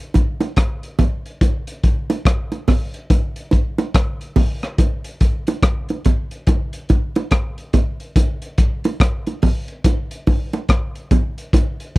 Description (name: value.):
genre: reggae.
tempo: 71 BPM.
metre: 4/4.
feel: swing 62% on 16ths.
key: none.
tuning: none.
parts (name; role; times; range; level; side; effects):
crunchy breakbeat drum kit; drums; 0.1-12.0 s; hi-hat, kick drum, rim click; -16 LUFS; equal; none.
bongos; percussion; 0.1-11.8 s; none; -20 LUFS; right 4 dB; none.
room: little or no reverb.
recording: dry, close 1970s-style studio recording.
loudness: -17 LUFS.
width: side -20 dB against mid.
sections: 0.0-12.0 A section.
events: none.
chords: none.